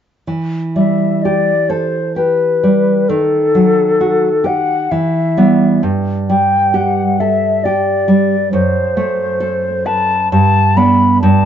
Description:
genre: romantic duo for flute and classical guitar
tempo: 66 BPM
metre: 3/4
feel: rubato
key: E minor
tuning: A4 = 439 Hz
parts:
  - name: nylon-string guitar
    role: accompaniment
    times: 0.3-11.5 s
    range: F#2 to B4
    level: -14 LUFS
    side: right 2 dB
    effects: none
  - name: hollow concert flute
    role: melody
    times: 0.8-11.5 s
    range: A4 to B5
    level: -14 LUFS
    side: left 3 dB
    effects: none
room: moderate stone room reverb, RT60 1.2 s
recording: band playing live in one room, nothing above 7.7 kHz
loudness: -11 LUFS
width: side -9 dB against mid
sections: 0.3-11.5 A section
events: none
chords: 0.3 Em; 3.1 D#dim; 4.9 Em; 5.8 G5; 8.5 F#dim; 10.3 G

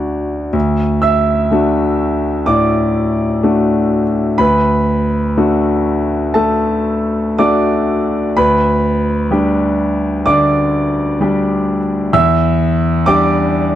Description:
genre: neoclassical minimalist piano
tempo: 62 BPM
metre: 4/4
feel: rubato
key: D major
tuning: A4 = 440 Hz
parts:
  - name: clear concert grand piano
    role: solo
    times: 0.0-13.8 s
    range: D2 to E6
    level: -12 LUFS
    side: equal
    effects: none
room: little or no reverb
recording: dry, close 1970s-style studio recording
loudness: -12 LUFS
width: side -12 dB against mid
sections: 0.5-13.8 A section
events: none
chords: 0.0 D; 8.4 G/D; 12.1 Em7

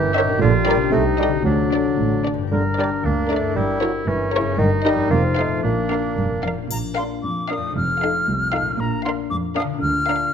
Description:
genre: cinematic, playful, whimsical film cue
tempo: 115 BPM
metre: 2/4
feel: straight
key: G minor, Bb major from 4.6 s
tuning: A4 = 435 Hz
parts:
  - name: warm oboe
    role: second line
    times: 0.0-6.4 s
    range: Db4 to Bb4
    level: -26 LUFS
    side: right 2 dB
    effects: none
  - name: mellow bassoon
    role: accompaniment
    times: 0.0-6.4 s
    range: Db3 to Bb3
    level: -24 LUFS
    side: right 3 dB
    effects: none
  - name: dark French horn section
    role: sustained chords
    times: 0.0-6.4 s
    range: Db4 to C5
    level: -27 LUFS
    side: left 6 dB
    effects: none
  - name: concert harp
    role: arpeggios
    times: 0.0-10.3 s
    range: F2 to Bb4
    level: -26 LUFS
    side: left 11 dB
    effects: none
  - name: dark chamber cello section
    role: bass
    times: 0.0-10.2 s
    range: C2 to D3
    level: -26 LUFS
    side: right 2 dB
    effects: none
  - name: warm studio double bass section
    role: bass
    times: 0.0-10.2 s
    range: F1 to D2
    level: -25 LUFS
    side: right 4 dB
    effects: none
  - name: warm chamber violin section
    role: melody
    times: 0.2-10.3 s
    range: Db5 to F5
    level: -28 LUFS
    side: left 4 dB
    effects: none
  - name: dark chamber violin section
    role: second line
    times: 0.2-10.3 s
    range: A4 to Db5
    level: -30 LUFS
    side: left 3 dB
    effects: none
  - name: warm chamber viola section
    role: accompaniment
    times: 0.2-10.3 s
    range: D4 to Bb4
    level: -29 LUFS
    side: right 2 dB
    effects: none
  - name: bright silver concert flute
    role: second line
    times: 6.7-10.3 s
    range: Bb5 to F6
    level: -23 LUFS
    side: left 1 dB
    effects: none
  - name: triangle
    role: percussion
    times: 6.7-7.7 s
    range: none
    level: -35 LUFS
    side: left 7 dB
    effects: none
room: moderate scoring stage reverb, RT60 1.6 s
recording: close, detailed microphones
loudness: -18 LUFS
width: side -7 dB against mid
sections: 0.0-6.7 A section; 6.7-10.3 B section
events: none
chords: 0.4 Gm/Bb; 0.9 Am7b5/C; 1.5 D; 2.5 Gm; 3.6 Gdim7; 4.6 Eb/G; 5.1 F7; 5.6 Bb; 7.7 F7; 8.8 Bb; 9.8 Bb/D

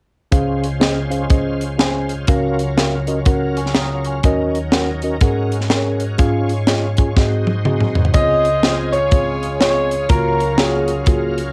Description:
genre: uptempo gospel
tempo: 123 BPM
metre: 4/4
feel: swing 62% on 8ths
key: Db major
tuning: A4 = 440 Hz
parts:
  - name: mellow tine electric piano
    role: accompaniment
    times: 0.3-11.5 s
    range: Db2 to Eb6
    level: -21 LUFS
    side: equal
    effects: none
  - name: bright tonewheel organ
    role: sustained chords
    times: 0.3-11.5 s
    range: Db3 to F5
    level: -30 LUFS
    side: equal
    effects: slow rotary speaker, overdrive, chorus vibrato
  - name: tight funk drum kit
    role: drums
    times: 0.3-11.5 s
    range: hi-hat, kick drum, snare drum, toms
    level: -19 LUFS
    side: equal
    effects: cassette tape
  - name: clear saxophone section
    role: melody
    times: 8.1-11.5 s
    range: F4 to Eb5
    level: -24 LUFS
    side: equal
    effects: cassette tape
  - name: warm concert grand piano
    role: melody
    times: 8.1-11.5 s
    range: Ab4 to Eb5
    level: -23 LUFS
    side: equal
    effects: cassette tape
room: light reverb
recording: home recording on cassette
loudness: -17 LUFS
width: mono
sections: 0.3-8.1 A section; 8.1-11.5 B section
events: drum fill 7.2-8.1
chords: 0.3 Dbmaj7; 2.3 Gbmaj7/Db; 4.2 Ebm7; 5.2 Ab9sus4; 6.2 Db/Ab; 7.2 Ab7; 8.1 Dbmaj7; 10.1 Gbmaj7/Db

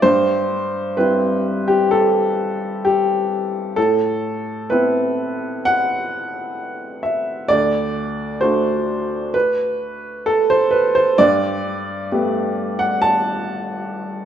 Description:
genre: neoclassical minimalist piano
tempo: 65 BPM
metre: 4/4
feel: rubato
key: G major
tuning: A4 = 440 Hz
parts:
  - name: clear upright piano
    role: solo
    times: 0.0-14.2 s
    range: D2 to A5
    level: -17 LUFS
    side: equal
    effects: none
room: moderate recital hall reverb, RT60 1.7 s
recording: minimal, uncompressed stereo recording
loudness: -17 LUFS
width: side -9 dB against mid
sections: 0.0-14.2 A section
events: none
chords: 0.0 C/G; 3.8 Amadd9; 7.5 D; 11.2 Gadd9

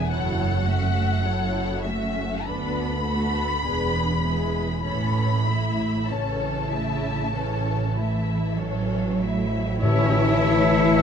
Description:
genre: classical, slow romantic movement for symphony orchestra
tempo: 47-54 BPM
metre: 4/4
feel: rubato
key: A major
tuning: A4 = 440 Hz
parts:
  - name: warm symphonic violin section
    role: melody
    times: 0.0-11.0 s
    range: C#5 to B5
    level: -30 LUFS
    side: left 4 dB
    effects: none
  - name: warm symphonic violin section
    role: second line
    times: 0.0-11.0 s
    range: E4 to F#5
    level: -32 LUFS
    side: left 4 dB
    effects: none
  - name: warm symphonic viola section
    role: accompaniment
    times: 0.0-11.0 s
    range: E3 to E4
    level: -30 LUFS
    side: right 1 dB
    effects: none
  - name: rich symphonic cello section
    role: bass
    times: 0.1-11.0 s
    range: D2 to E4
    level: -28 LUFS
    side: right 2 dB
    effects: none
  - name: rich symphonic double bass section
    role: bass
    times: 0.1-11.0 s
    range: E1 to D2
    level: -27 LUFS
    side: right 3 dB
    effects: none
  - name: cymbal swell and tam-tam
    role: percussion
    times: 4.8-11.0 s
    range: none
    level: -32 LUFS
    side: left 2 dB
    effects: none
  - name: clear clarinet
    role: second line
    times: 9.8-11.0 s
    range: C#5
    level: -30 LUFS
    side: right 1 dB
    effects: none
  - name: clear oboe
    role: second line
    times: 9.8-11.0 s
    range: E5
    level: -29 LUFS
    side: left 2 dB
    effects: none
  - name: hollow concert flute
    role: second line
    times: 9.8-11.0 s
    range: A5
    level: -33 LUFS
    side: equal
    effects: none
  - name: dark bassoon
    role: accompaniment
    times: 9.8-11.0 s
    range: E3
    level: -27 LUFS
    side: left 3 dB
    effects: none
  - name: mellow French horn section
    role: sustained chords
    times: 9.8-11.0 s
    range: E3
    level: -24 LUFS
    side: left 9 dB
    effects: none
  - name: timpani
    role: percussion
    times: 9.8-11.0 s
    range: A2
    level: -25 LUFS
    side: equal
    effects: none
room: moderate recital hall reverb, RT60 1.5 s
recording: dark, warm production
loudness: -21 LUFS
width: side -7 dB against mid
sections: 0.0-9.8 A section; 9.8-11.0 A section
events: band accent 9.8-11.0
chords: 0.1 F#m7; 2.5 Bm7/D; 3.6 E7; 4.8 A

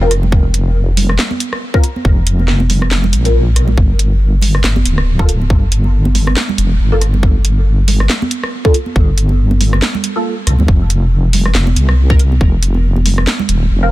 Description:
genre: deep dubstep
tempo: 139 BPM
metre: 4/4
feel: swing 57% on 16ths, half-time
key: unclear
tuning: A4 = 442 Hz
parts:
  - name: filtered dub chord stab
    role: stabs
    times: 0.0-13.9 s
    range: Bb3 to Bb4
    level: -22 LUFS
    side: left 1 dB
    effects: phaser, ensemble chorus, dub echo
  - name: deep soft wobble bass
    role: bass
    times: 0.0-13.9 s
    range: D1 to D2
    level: -12 LUFS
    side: equal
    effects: chorus
  - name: garage drum kit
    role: drums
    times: 0.1-13.6 s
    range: handclaps, hi-hat, rim click, snare drum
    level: -20 LUFS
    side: equal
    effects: none
  - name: congas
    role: percussion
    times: 0.2-13.5 s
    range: none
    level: -22 LUFS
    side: right 5 dB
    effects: dub echo
  - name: electronic kick drum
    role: drums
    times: 0.3-12.5 s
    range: none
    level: -11 LUFS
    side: equal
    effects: none
room: little or no reverb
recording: dense, heavily limited modern master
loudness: -10 LUFS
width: side -17 dB against mid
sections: 0.0-13.9 A section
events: none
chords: 0.0 Fsus4; 3.8 N.C.; 10.7 F5

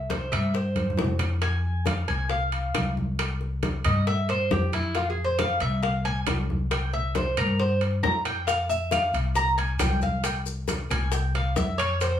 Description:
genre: latin, Cuban son and guajira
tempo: 136 BPM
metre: 4/4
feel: straight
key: F harmonic minor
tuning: A4 = 440 Hz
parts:
  - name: Cuban tres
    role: arpeggios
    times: 0.0-12.2 s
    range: E4 to Bb5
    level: -27 LUFS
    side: equal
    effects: none
  - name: upright bass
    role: bass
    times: 0.0-12.2 s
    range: C2 to G2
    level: -27 LUFS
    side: left 1 dB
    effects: none
  - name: bongos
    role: percussion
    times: 0.1-12.2 s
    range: none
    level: -33 LUFS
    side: left 6 dB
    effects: none
  - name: congas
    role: percussion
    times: 0.1-12.2 s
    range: none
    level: -32 LUFS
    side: equal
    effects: none
  - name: timbales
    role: percussion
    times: 0.1-12.2 s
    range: none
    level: -33 LUFS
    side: right 4 dB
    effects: none
  - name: claves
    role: percussion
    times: 0.3-12.0 s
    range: none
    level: -39 LUFS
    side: left 4 dB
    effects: none
  - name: maracas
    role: percussion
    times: 8.5-12.2 s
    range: none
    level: -39 LUFS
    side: left 6 dB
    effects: none
room: wet studio reverb, RT60 0.6 s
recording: band playing live in one room, small room ambience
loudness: -23 LUFS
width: side -10 dB against mid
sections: 0.0-12.2 A section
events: Cuban tres solo 0.0-12.2; drum fill 0.8-1.4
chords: 0.0 C; 1.4 Fm; 3.2 C5; 5.0 F5; 6.7 C5; 8.5 F5

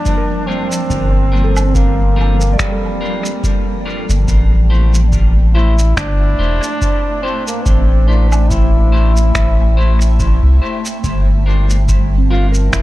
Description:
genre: ambient dub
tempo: 71 BPM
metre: 4/4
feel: swing 56% on 16ths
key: G dorian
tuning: A4 = 442 Hz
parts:
  - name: clear trombone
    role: melody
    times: 0.0-12.8 s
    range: G3 to F4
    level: -22 LUFS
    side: equal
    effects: dub echo
  - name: granular cloud pad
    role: sustained chords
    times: 0.0-12.8 s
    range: F3 to A5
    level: -24 LUFS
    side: right 1 dB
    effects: built-in reverb
  - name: soft synth bell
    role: arpeggios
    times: 0.0-6.7, 12.2-12.8 s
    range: C4 to G5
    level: -27 LUFS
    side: right 4 dB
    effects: chorus, phaser, dub echo
  - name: electronic kick drum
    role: drums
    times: 0.1-12.8 s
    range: none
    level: -19 LUFS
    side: equal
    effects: none
  - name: electronic shaker, woodblock and finger snaps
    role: drums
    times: 0.1-12.8 s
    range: none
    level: -24 LUFS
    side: right 1 dB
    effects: dub echo
  - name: clean electric guitar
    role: stabs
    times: 0.5-12.5 s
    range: G3 to C5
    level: -26 LUFS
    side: left 3 dB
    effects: dub echo
  - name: round analog bass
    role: bass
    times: 0.9-12.8 s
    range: E1 to C2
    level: -12 LUFS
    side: equal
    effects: none
room: digital ambience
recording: none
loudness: -11 LUFS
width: side -16 dB against mid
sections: 0.0-12.8 A section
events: none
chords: 0.0 Gm7; 4.3 Am7; 11.0 Gm7

